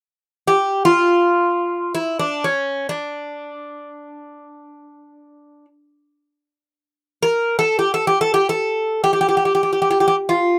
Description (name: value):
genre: greek folk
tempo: free time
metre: none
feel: none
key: D harmonic minor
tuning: A4 = 440 Hz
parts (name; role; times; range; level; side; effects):
- Greek bouzouki; melody; 0.5-10.6 s; C#4 to Bb4; -19 LUFS; equal; none
room: moderate booth ambience, RT60 0.2 s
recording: dry, close 1970s-style studio recording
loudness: -18 LUFS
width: mono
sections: 0.0-10.6 A section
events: none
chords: none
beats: free time